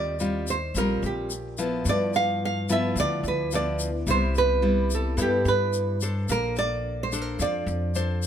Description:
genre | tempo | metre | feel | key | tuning
bossa nova | 108 BPM | 4/4 | straight | C major | A4 = 444 Hz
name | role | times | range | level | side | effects
nylon-string guitar | melody | 0.0-8.2 s | G4 to F5 | -26 LUFS | right 4 dB | none
nylon-string guitar | accompaniment | 0.0-8.3 s | G2 to C5 | -28 LUFS | left 2 dB | none
upright bass | bass | 0.0-8.3 s | Bb1 to G2 | -29 LUFS | equal | none
tube shaker | percussion | 0.2-8.3 s | none | -36 LUFS | left 7 dB | none
room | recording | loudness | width
little or no reverb | none | -23 LUFS | side -9 dB against mid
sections
0.0-8.3 A section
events
none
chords
0.0 Eb69; 1.9 G6; 4.1 Cmaj7; 6.3 Bbmaj9

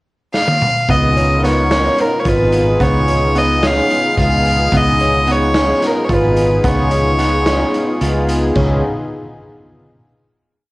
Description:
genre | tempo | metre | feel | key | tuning
progressive instrumental, band music in an uneven meter | 219 BPM (eighths) | 7/8 | straight | Db mixolydian | A4 = 440 Hz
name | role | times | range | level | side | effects
rich violin | melody | 0.3-8.0 s | Bb4 to F5 | -16 LUFS | equal | none
raw garage drum kit | drums | 0.3-8.7 s | crash cymbal, hi-hat, kick drum, snare drum, toms | -21 LUFS | equal | cassette tape
warm analog pad | accompaniment | 0.9-8.8 s | Cb4 to Bb4 | -19 LUFS | left 1 dB | chorus, cassette tape
clear concert grand piano | arpeggios | 0.9-8.8 s | Cb4 to F4 | -21 LUFS | right 2 dB | cassette tape
fretless electric bass | bass | 0.9-8.8 s | Ab1 to Db2 | -17 LUFS | equal | lush chorus
room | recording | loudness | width
light reverb | home recording on cassette | -12 LUFS | side -21 dB against mid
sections
0.0-0.9 pickup bar; 0.9-8.6 A section; 8.6-10.5 final chord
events
drum fill 0.3-0.9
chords
0.0 N.C.; 0.9 Db7

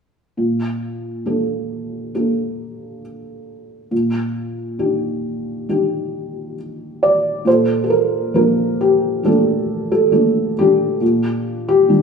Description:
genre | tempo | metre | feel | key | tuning
folk | 68 BPM | 4/4 | straight | Bb major | A4 = 439 Hz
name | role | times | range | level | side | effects
felt-muted upright piano | melody | 0.4-12.0 s | Bb2 to D5 | -16 LUFS | equal | none
room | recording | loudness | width
wet stone room reverb, RT60 1.3 s | band playing live in one room | -16 LUFS | side -6 dB against mid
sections
0.4-7.5 A section; 7.5-12.0 B section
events
none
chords
0.4 Bbmaj7; 3.9 Ebmaj7/Bb; 7.5 Bbmaj7; 11.0 Ebmaj7/Bb (rootless)

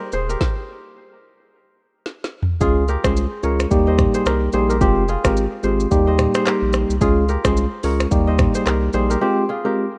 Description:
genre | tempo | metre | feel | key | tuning
afrobeats | 109 BPM | 4/4 | swing 58% on 16ths | Eb mixolydian | A4 = 440 Hz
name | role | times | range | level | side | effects
kora | riff | 0.0-10.0 s | C4 to Eb5 | -27 LUFS | equal | tape echo
warm sub bass | bass | 0.1-9.2 s | Eb1 to Eb2 | -23 LUFS | equal | none
afro-pop drum kit | drums | 0.1-9.2 s | finger snaps, handclaps, hi-hat, kick drum, rim click, shaker, snare drum, toms | -24 LUFS | equal | vintage 12-bit sampler grit
tine electric piano | accompaniment | 2.6-9.8 s | G3 to Ab4 | -22 LUFS | equal | none
room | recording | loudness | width
light reverb | rough home demo mix | -18 LUFS | mono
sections
0.0-2.6 A section; 2.6-10.0 B section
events
stop 0.4-2.6; drum fill 2.1-2.6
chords
0.4 N.C.; 2.6 Db; 3.7 Eb; 4.8 Fmadd9; 5.9 Eb; 7.0 Db; 8.1 Eb; 9.2 Fmadd9

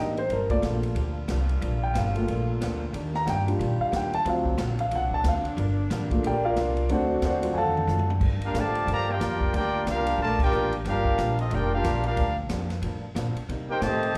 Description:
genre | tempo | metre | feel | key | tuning
jazz, big band swing | 182 BPM | 4/4 | swing 61% on 8ths | G minor | A4 = 440 Hz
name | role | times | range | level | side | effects
archtop guitar, miked and amplified | accompaniment | 0.0-14.2 s | G2 to Bb4 | -40 LUFS | equal | none
warm grand piano | accompaniment | 0.0-8.2 s | F#3 to Bb5 | -29 LUFS | equal | slapback echo
upright bass | bass | 0.0-14.2 s | F1 to C3 | -30 LUFS | equal | none
swinging big-band drum kit | drums | 0.2-14.2 s | crash cymbal, hi-hat, kick drum, ride cymbal, snare drum, toms | -36 LUFS | equal | none
clear saxophone section | sustained chords | 0.3-8.2 s | Bb2 to G4 | -41 LUFS | equal | none
warm trumpet section | melody | 8.4-14.2 s | C4 to Bb5 | -29 LUFS | equal | slapback echo
warm trombone section | second line | 8.4-14.2 s | C3 to G4 | -33 LUFS | equal | slapback echo
room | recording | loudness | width
light reverb, studio reverb | live gig heard through the venue's PA, club reverb | -26 LUFS | mono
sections
0.0-8.2 A section; 8.2-14.2 B section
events
grand piano solo 0.0-8.2; drum fill 7.6-8.2; band accent 10.4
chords
0.3 Gm7; 2.9 Ebmaj7; 4.3 D7#9; 5.6 Gm7; 6.9 D7#9; 8.2 Gm7; 13.5 Cm7

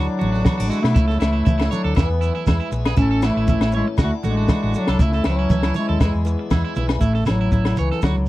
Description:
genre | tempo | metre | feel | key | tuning
highlife guitar band | 119 BPM | 4/4 | straight | A major | A4 = 441 Hz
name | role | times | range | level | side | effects
warm bass clarinet | melody | 0.0-8.3 s | E3 to C#4 | -22 LUFS | equal | tape echo
warm trumpet | second line | 0.0-6.5 s | B3 to A4 | -32 LUFS | left 8 dB | none
picked steel-string acoustic guitar | accompaniment | 0.0-8.3 s | E2 to G#4 | -30 LUFS | left 4 dB | none
tonewheel organ | sustained chords | 0.0-7.0 s | B4 to A5 | -35 LUFS | left 1 dB | slow rotary speaker, overdrive
electric guitar at the edge of break-up | arpeggios | 0.0-8.2 s | E4 to C#5 | -30 LUFS | right 11 dB | tape echo
hollow-body short-scale fingered electric bass | bass | 0.0-8.3 s | A1 to B2 | -22 LUFS | equal | none
congas | percussion | 0.2-6.9 s | none | -27 LUFS | right 3 dB | none
compact cocktail drum kit | drums | 0.3-8.2 s | kick drum, snare drum | -20 LUFS | equal | none
agogo bells | percussion | 0.5-8.2 s | none | -34 LUFS | left 16 dB | none
shekere | percussion | 0.5-8.1 s | none | -25 LUFS | right 2 dB | none
room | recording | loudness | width
little or no reverb | dry, close 1970s-style studio recording | -17 LUFS | side -16 dB against mid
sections
0.0-7.0 A section; 7.0-8.3 B section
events
none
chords
0.0 D; 1.0 A/C#; 2.0 E; 3.0 A; 4.0 D; 5.0 A/C#; 6.0 E; 7.0 A

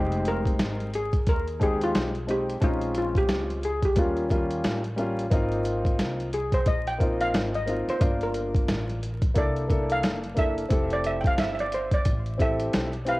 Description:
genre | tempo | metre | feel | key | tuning
hip hop, jazz-hop | 89 BPM | 4/4 | swing 60% on 16ths | F dorian | A4 = 439 Hz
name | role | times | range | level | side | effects
warm upright piano | accompaniment | 0.0-13.2 s | G3 to B4 | -29 LUFS | left 1 dB | cassette tape
upright bass | bass | 0.0-13.2 s | F1 to Eb2 | -32 LUFS | equal | none
boom bap sampler-style drum kit | drums | 0.1-13.2 s | hi-hat, kick drum, snare drum | -26 LUFS | equal | cassette tape
steel pan | melody | 0.3-13.2 s | Eb4 to G5 | -28 LUFS | equal | analog delay
room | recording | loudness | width
light reverb, small room ambience | home recording on cassette, vinyl crackle | -23 LUFS | side -20 dB against mid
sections
0.0-13.2 A section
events
steel pan solo 0.0-13.2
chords
0.0 Fm7; 2.6 Bbm7; 4.0 Eb7; 5.3 Ab69; 8.0 Gm9; 9.4 C13; 10.7 Fmaj7

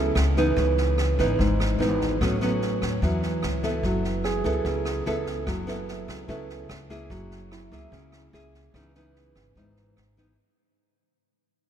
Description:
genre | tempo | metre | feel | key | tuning
bossa nova | 147 BPM | 4/4 | straight | C# minor | A4 = 440 Hz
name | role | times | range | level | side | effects
nylon-string guitar | accompaniment | 0.0-10.4 s | G#2 to A4 | -26 LUFS | right 1 dB | none
upright bass | bass | 0.0-10.3 s | F#1 to E2 | -28 LUFS | equal | none
open jazz drum kit | drums | 0.2-10.2 s | kick drum, rim click, snare drum | -33 LUFS | equal | none
warm baby grand piano | accompaniment | 4.2-8.9 s | E4 to G#4 | -34 LUFS | right 5 dB | none
room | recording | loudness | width
moderate cathedral reverb, RT60 5.1 s | in a vast, echoing space | -22 LUFS | side -9 dB against mid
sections
0.0-10.4 A section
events
fade-out 0.0-10.4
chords
0.0 F#m7 (rootless); 0.6 C#m9; 2.2 A69; 3.8 F#m11; 7.1 F#9; 8.7 C#m9

